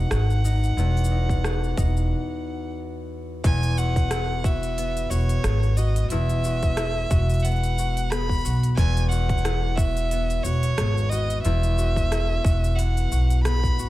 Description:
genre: folktronica.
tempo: 90 BPM.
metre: 4/4.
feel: swing 56% on 16ths.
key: E major.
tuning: A4 = 440 Hz.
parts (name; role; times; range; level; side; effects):
clear violin; melody; 0.0-13.9 s; C#5 to B5; -29 LUFS; equal; ping-pong delay.
concert harp; arpeggios; 0.0-13.9 s; E2 to F#4; -30 LUFS; left 3 dB; none.
upright bass; bass; 0.0-13.9 s; E1 to B1; -22 LUFS; equal; none.
organic electronic drum kit; drums; 0.1-13.9 s; hi-hat, rim click, shaker; -32 LUFS; equal; overdrive.
electronic kick drum; drums; 1.3-13.8 s; none; -23 LUFS; equal; overdrive.
room: small room ambience.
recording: none.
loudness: -20 LUFS.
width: side -16 dB against mid.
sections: 0.0-3.4 A section; 3.4-13.9 B section.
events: filter sweep on harp 0.0-3.4; break 2.1-3.4.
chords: 0.0 D#m/E; 3.4 Eadd9.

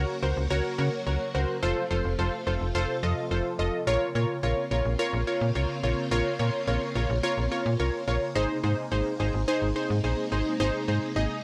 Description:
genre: synth-pop.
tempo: 107 BPM.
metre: 4/4.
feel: straight.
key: Bb minor.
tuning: A4 = 440 Hz.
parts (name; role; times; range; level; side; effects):
funky polysynth comp; accompaniment; 0.0-11.4 s; Eb4 to Eb5; -30 LUFS; equal; chorus.
phased string machine; sustained chords; 0.0-11.4 s; C3 to Gb4; -38 LUFS; equal; ensemble chorus, phaser.
slap-like FM bass; bass; 0.0-11.3 s; F1 to Db3; -30 LUFS; equal; none.
room: light reverb, digital ambience.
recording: dry, gritty hardware recording, cassette tape.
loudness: -27 LUFS.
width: mono.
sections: 0.0-3.9 A section; 3.9-11.4 B section.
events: none.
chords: 0.0 Gb/Db; 1.6 F; 3.9 Bbmadd9; 8.4 Abadd9.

